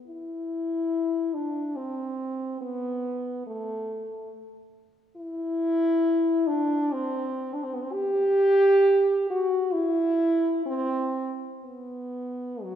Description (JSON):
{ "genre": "classical, free, expressive piece for unaccompanied French horn", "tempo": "56-71 BPM", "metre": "3/4", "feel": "rubato", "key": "G major from 5.2 s", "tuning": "A4 = 442 Hz", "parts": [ { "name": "mellow French horn", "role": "solo", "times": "0.1-12.8 s", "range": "F#3 to G4", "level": "-24 LUFS", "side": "equal", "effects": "none" } ], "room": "wet concert hall reverb, RT60 1.8 s", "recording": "none", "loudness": "-23 LUFS", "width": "side -9 dB against mid", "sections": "0.0-12.8 A section", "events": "none", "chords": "none", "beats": "| 0.05 0.92 1.76 | 2.62 3.46 4.31 | 5.17 6.05 6.94 | 7.95 8.88 9.76 | 10.67 11.62 12.62" }